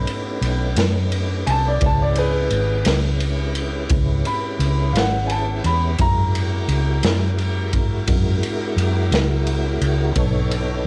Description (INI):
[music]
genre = slow blues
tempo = 58 BPM (dotted quarters)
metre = 12/8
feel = straight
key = B major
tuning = A4 = 440 Hz
[part]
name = warm upright piano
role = second line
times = 0.0-8.0 s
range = G#4 to B5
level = -27 LUFS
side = equal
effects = cassette tape, plate reverb
[part]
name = tonewheel organ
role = sustained chords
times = 0.0-10.9 s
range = G#3 to C#5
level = -30 LUFS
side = equal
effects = overdrive, chorus vibrato, slow rotary speaker, cassette tape, plate reverb
[part]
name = vintage muted fingered electric bass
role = bass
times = 0.0-10.8 s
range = G#1 to F#2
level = -23 LUFS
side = equal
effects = none
[part]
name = raw garage drum kit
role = drums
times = 0.1-10.7 s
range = kick drum, ride cymbal, snare drum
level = -25 LUFS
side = equal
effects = none
[sound]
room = light reverb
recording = home recording on cassette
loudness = -20 LUFS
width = mono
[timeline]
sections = 0.0-10.9 A section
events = upright piano solo 0.0-10.9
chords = 0.0 B9; 1.8 C#m7; 6.0 F#9; 10.2 B9